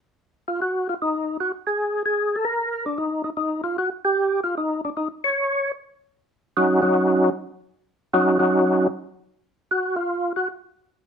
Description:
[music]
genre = jazz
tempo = 152 BPM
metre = 4/4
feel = swing 67% on 8ths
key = Eb minor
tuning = A4 = 440 Hz
[part]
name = percussive tonewheel organ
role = solo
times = 0.5-10.5 s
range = Gb3 to Db5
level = -20 LUFS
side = equal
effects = slow rotary speaker, overdrive, chorus vibrato
[sound]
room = moderate club reverb, RT60 0.8 s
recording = minimal, uncompressed stereo recording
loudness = -20 LUFS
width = side -7 dB against mid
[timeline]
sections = 0.0-6.1 A section; 6.1-11.1 B section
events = tonewheel organ solo 6.1-11.1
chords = 0.0 N.C.; 6.1 Ebm7

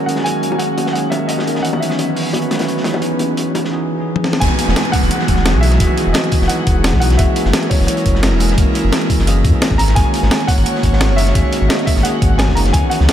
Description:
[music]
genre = liquid drum and bass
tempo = 173 BPM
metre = 4/4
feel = straight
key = unclear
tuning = A4 = 440 Hz
[part]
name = dark grand piano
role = melody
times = 0.0-13.1 s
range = C#5 to A#5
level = -23 LUFS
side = equal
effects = ping-pong delay
[part]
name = bell-like tine electric piano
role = accompaniment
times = 0.0-13.1 s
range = D#3 to G#4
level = -20 LUFS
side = equal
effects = vintage 12-bit sampler grit, diffuse ambient delay
[part]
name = airy breathy pad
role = sustained chords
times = 0.0-13.1 s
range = F#3 to D#6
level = -22 LUFS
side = right 1 dB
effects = chorus
[part]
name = crunchy breakbeat drum kit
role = drums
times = 0.1-13.1 s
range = hi-hat, snare drum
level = -25 LUFS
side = equal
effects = high-pass filter on hats, high-pass filter on snare, high-pass filter on room
[part]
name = bongos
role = percussion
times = 0.2-3.6 s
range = none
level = -27 LUFS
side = left 3 dB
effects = none
[part]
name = breakbeat sampler-style drum kit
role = drums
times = 4.2-13.1 s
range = hi-hat, snare drum, toms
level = -20 LUFS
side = equal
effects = none
[part]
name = warm sub bass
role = bass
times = 4.4-13.1 s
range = E1 to F#2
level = -15 LUFS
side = equal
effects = none
[part]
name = electronic kick drum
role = drums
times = 4.4-12.8 s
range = none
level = -17 LUFS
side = equal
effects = none
[part]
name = downlifter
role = sound effects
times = 4.4-7.2 s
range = none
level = -24 LUFS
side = right 1 dB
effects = none
[sound]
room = moderate huge ambient reverb, RT60 6.9 s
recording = dreamy mix soaked in reverb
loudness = -13 LUFS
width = side -10 dB against mid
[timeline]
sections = 0.0-4.4 A section; 4.4-13.1 B section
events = drum fill 4.2; drop 4.4-13.1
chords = 0.0 G#9sus4; 1.6 C#m11; 4.4 Emaj9; 7.2 F#9; 9.8 G#9sus4

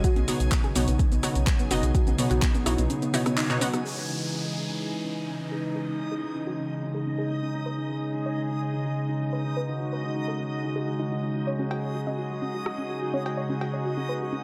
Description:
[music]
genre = progressive house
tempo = 126 BPM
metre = 4/4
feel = straight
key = C# minor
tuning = A4 = 440 Hz
[part]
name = warm analog pad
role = sustained chords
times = 0.0-14.4 s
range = C#3 to G#4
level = -32 LUFS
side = equal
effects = chorus, sidechain pumping
[part]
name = soft round pluck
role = arpeggios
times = 0.0-14.3 s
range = B3 to D#5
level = -36 LUFS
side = equal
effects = lush chorus, sidechain pumping, dub echo
[part]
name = deep house drum kit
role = drums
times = 0.0-3.8 s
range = handclaps, hi-hat, shaker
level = -35 LUFS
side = equal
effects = overdrive, low-pass filter on hats, low-pass filter on perc, low-pass filter on snare, low-pass filter on room
[part]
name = electronic kick drum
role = drums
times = 0.0-2.5 s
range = none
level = -26 LUFS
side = equal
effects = overdrive
[part]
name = backwards swelling texture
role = texture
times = 0.0-14.4 s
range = D#4 to G#5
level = -42 LUFS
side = equal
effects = built-in reverb, sidechain pumping
[part]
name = round analog bass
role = bass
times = 0.2-2.9 s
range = F#1 to B1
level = -29 LUFS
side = equal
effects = sidechain pumping
[part]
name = electronic congas, rim click and cowbell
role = percussion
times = 0.2-3.8, 11.6-14.4 s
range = none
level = -38 LUFS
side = equal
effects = sidechain pumping on perc, sidechain pumping on snare
[part]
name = unison pluck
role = stabs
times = 0.3-3.8 s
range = B2 to F#5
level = -33 LUFS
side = equal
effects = sidechain pumping, dub echo
[part]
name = downlifter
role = sound effects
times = 3.9-7.7 s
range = none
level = -40 LUFS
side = equal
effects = none
[sound]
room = moderate lush hall reverb, RT60 2.3 s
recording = none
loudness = -28 LUFS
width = mono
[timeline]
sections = 0.0-3.9 A section; 3.9-14.4 B section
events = filter sweep on analog synth pad 0.0-3.9; kick drops out 2.9-3.9; band accent 3.4; filter sweep on synth pluck 3.9-14.4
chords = 0.0 Badd9; 3.9 C#madd9; 7.7 G#sus4

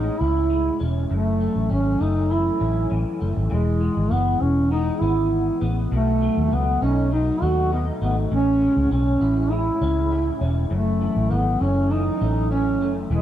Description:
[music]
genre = indie pop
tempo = 100 BPM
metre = 4/4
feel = straight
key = E major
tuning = A4 = 441 Hz
[part]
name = dark duduk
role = melody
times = 0.0-13.2 s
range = G#3 to F#4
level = -22 LUFS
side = right 1 dB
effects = lush chorus, tape echo
[part]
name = electric guitar through a small old amp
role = accompaniment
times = 0.0-13.2 s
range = F#2 to E4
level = -28 LUFS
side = left 2 dB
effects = ensemble chorus, vibrato effect
[part]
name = vintage muted fingered electric bass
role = bass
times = 0.0-13.2 s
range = E1 to D#2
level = -22 LUFS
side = equal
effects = none
[part]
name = lush unison pad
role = sustained chords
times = 13.1-13.2 s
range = B4 to D#6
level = -33 LUFS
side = right 2 dB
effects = chorus
[sound]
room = moderate small room reverb, RT60 0.6 s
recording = dark, warm production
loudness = -19 LUFS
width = side -11 dB against mid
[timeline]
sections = 0.0-3.5 A section; 3.5-13.2 B section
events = none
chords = 0.0 Amaj7; 1.1 F#m7; 3.5 E; 5.9 B7; 8.3 Amaj7; 10.7 F#m7

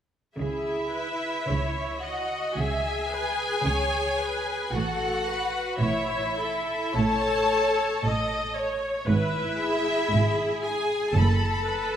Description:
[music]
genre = classical, slow romantic movement for string orchestra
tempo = 49-59 BPM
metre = 4/4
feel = rubato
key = C# minor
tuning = A4 = 440 Hz
[part]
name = rich symphonic violin section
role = melody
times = 0.4-12.0 s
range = E5 to B5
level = -30 LUFS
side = left 3 dB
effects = none
[part]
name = rich studio violin section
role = second line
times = 0.4-12.0 s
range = E4 to A4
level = -30 LUFS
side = left 1 dB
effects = none
[part]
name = rich symphonic viola section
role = accompaniment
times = 0.4-12.0 s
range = G#4 to E5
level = -30 LUFS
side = equal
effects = none
[part]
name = rich symphonic cello section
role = bass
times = 0.4-12.0 s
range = F#2 to C#3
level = -30 LUFS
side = right 2 dB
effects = none
[part]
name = warm symphonic double bass section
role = bass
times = 0.4-12.0 s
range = F#1 to C#2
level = -29 LUFS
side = right 2 dB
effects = none
[sound]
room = wet recital hall reverb, RT60 1.9 s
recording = none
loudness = -24 LUFS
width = side -9 dB against mid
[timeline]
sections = 0.4-12.0 A section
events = none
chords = 0.4 C#m; 4.7 A; 9.1 E/G#; 11.1 F#m

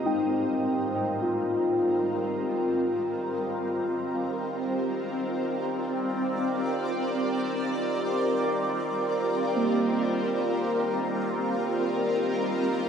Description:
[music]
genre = ambient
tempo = free time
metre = none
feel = none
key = unclear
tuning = A4 = 440 Hz
[part]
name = shimmering ambient pad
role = sustained chords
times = 0.0-12.9 s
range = Ab2 to Eb5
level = -26 LUFS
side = equal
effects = chorus, built-in reverb, phaser, shimmer reverb
[part]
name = muted felt-like synth keys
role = arpeggios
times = 0.0-12.9 s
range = Bb3 to G5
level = -30 LUFS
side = equal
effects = chorus, dub echo, shimmer reverb
[part]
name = hand-pumped harmonium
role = drone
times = 0.0-12.9 s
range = Eb3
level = -40 LUFS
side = equal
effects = none
[sound]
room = wet echo chamber reverb, RT60 2.0 s, small room ambience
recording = echo-heavy mix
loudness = -25 LUFS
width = side -7 dB against mid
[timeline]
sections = 0.0-12.9 A section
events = fade-in on harmonium 0.0-12.9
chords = 0.0 Ab6; 2.4 Bb; 12.0 Eb/Bb

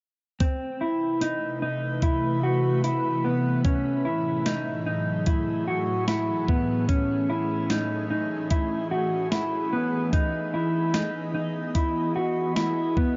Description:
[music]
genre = dream pop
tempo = 74 BPM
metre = 4/4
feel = straight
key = unclear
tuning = A4 = 439 Hz
[part]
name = ethereal airy pad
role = sustained chords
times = 1.1-13.2 s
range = A2 to D#5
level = -32 LUFS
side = equal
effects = ensemble chorus, built-in reverb
[part]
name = mellow electric guitar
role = arpeggios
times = 0.4-13.2 s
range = B3 to F#4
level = -28 LUFS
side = equal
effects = lush chorus, delay
[part]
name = clean 12-bit digital drum machine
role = drums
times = 0.4-13.2 s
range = hi-hat, kick drum, snare drum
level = -28 LUFS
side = equal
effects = none
[sound]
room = moderate shimmer reverb, RT60 5.5 s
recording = dark, warm production, nothing above 7.5 kHz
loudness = -26 LUFS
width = mono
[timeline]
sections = 0.4-13.2 A section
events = none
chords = 0.4 Amadd9; 3.6 F#m9/A; 6.9 Amaj7; 10.1 Emaj7

